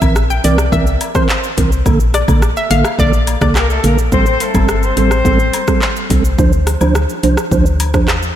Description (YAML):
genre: dancehall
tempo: 106 BPM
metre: 4/4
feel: straight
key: A phrygian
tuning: A4 = 440 Hz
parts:
  - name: mellow tonewheel organ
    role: accompaniment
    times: 0.0-8.1 s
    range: D3 to C5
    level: -17 LUFS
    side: right 3 dB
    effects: chorus vibrato, fast rotary speaker
  - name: woody FM bass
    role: bass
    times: 0.0-8.3 s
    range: G1 to E2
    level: -15 LUFS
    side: equal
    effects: none
  - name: afro-pop drum kit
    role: drums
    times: 0.0-8.4 s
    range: handclaps, hi-hat, kick drum, rim click, shaker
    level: -16 LUFS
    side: equal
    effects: none
  - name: woodblock and cabasa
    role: percussion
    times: 0.0-7.9 s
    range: none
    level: -29 LUFS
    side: left 8 dB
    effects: none
  - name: hollow square pluck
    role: melody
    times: 0.3-3.5 s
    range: C5 to G5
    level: -20 LUFS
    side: left 2 dB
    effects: chorus, analog delay
  - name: dark horn section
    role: second line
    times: 3.6-6.1 s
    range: A3 to C5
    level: -18 LUFS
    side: left 3 dB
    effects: analog delay
room: moderate lush hall reverb, RT60 2.2 s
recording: dreamy mix soaked in reverb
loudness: -11 LUFS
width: side -11 dB against mid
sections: 0.0-8.4 A section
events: none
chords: 0.0 C7; 1.9 Bbmaj7; 4.1 Am7; 6.4 Dm7